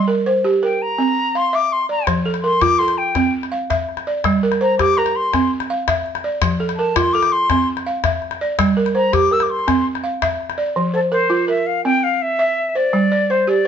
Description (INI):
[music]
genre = west african traditional, West African string and xylophone music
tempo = 110 BPM (dotted quarters)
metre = 12/8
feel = straight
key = F major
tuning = A4 = 440 Hz
[part]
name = silver concert flute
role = melody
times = 0.0-13.7 s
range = A4 to E6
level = -18 LUFS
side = left 3 dB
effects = none
[part]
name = balafon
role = arpeggios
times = 0.0-13.7 s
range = F3 to F5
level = -18 LUFS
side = right 2 dB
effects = none
[part]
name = calabash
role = percussion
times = 2.1-10.7 s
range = none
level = -23 LUFS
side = left 8 dB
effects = none
[sound]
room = moderate stone room reverb, RT60 1.0 s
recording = band playing live in one room, nothing above 7.7 kHz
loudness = -15 LUFS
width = side -8 dB against mid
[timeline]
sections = 0.0-10.8 A section; 10.8-13.7 B section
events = flute solo 0.0-10.8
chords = 0.0 Gm; 1.0 C; 2.1 F; 3.2 C; 4.2 Gm; 5.3 C; 6.4 F; 7.5 C; 8.6 Gm; 9.7 C; 10.8 F5; 11.8 C; 12.9 G5